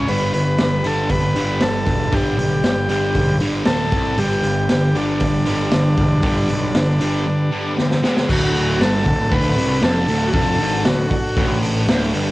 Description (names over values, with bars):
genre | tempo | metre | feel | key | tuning
garage rock duo or trio | 117 BPM | 4/4 | straight | D major | A4 = 444 Hz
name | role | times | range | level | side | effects
combo organ | melody | 0.0-11.6 s | D4 to C#5 | -22 LUFS | equal | none
thick fuzz guitar | riff | 0.0-12.3 s | D2 to C#4 | -20 LUFS | equal | distortion, cassette tape
fuzz picked electric bass | bass | 0.0-12.3 s | D1 to C2 | -23 LUFS | equal | overdrive, tube saturation
combo organ | sustained chords | 0.1-12.3 s | D4 to A5 | -29 LUFS | equal | cassette tape
raw garage drum kit | drums | 0.1-12.3 s | crash cymbal, hi-hat, kick drum, snare drum | -21 LUFS | equal | cassette tape
room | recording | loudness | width
small room ambience | home recording on cassette | -16 LUFS | side -18 dB against mid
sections
0.0-8.3 A section; 8.3-12.3 B section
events
transistor combo organ fill 7.3-8.3; drum fill 7.8-8.3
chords
0.1 G; 3.7 D5; 3.9 C5; 4.2 G; 8.0 C#5; 8.3 D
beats
| 0.09 0.60 1.11 1.62 | 2.13 2.65 3.16 3.67 | 4.18 4.70 5.21 5.72 | 6.24 6.75 7.27 7.78 | 8.29 8.81 9.32 9.84 | 10.35 10.86 11.38 11.89